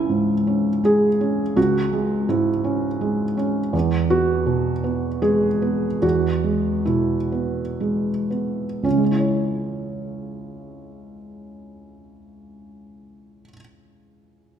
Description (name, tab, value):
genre	classical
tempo	56-84 BPM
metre	3/4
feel	rubato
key	C# minor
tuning	A4 = 440 Hz
part	felt-muted upright piano	accompaniment	0.0-14.6 s	C#2 to C#5	-19 LUFS	right 1 dB	none
room	moderate scoring stage reverb, RT60 1.8 s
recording	recorded in a church or concert hall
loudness	-19 LUFS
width	side -8 dB against mid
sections	0.0-8.8 A section; 8.8-12.0 B section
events	slowing down 2.6-8.8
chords	0.0 C#m; 3.7 Eadd9; 8.8 C#m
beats	0.10 0.84 | 1.57 2.28 3.00 | 3.73 4.47 5.23 | 6.03 6.88 7.80 | 8.84 9.89 10.93